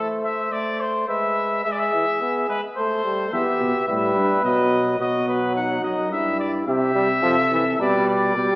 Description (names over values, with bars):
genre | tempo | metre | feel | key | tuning
classical, imitative canzona for brass ensemble | 107 BPM | 3/4 | straight | unclear | A4 = 439 Hz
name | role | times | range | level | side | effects
clear trumpet | melody | 0.0-8.6 s | B4 to F#5 | -23 LUFS | left 1 dB | none
mellow flugelhorn | second line | 0.0-8.6 s | D#4 to C5 | -25 LUFS | right 1 dB | none
warm trombone | accompaniment | 0.0-8.6 s | C3 to B3 | -25 LUFS | equal | none
mellow tuba | bass | 3.3-8.5 s | E2 to C3 | -25 LUFS | equal | none
room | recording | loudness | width
wet recital hall reverb, RT60 1.4 s | heard from further back in the room, small speaker sound | -19 LUFS | side -22 dB against mid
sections
0.0-6.7 A section; 6.7-8.6 B section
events
none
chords
0.0 Am; 1.1 E/G#; 1.6 E; 2.8 Am; 3.3 Em; 4.4 B; 6.1 Em/G; 6.7 C; 7.8 G/B